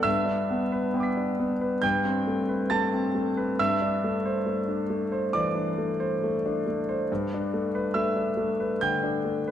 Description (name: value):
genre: classical, impressionist solo piano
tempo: 68 BPM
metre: 4/4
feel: rubato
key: G major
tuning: A4 = 444 Hz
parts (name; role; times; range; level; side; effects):
- clear concert grand piano; solo; 0.0-9.5 s; G2 to B6; -24 LUFS; equal; none
room: moderate concert hall reverb, RT60 1.8 s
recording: none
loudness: -24 LUFS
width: side -10 dB against mid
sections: 0.0-9.5 A section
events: none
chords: 0.0 G6; 1.8 Am9/G; 3.6 C69/G; 7.1 Gadd9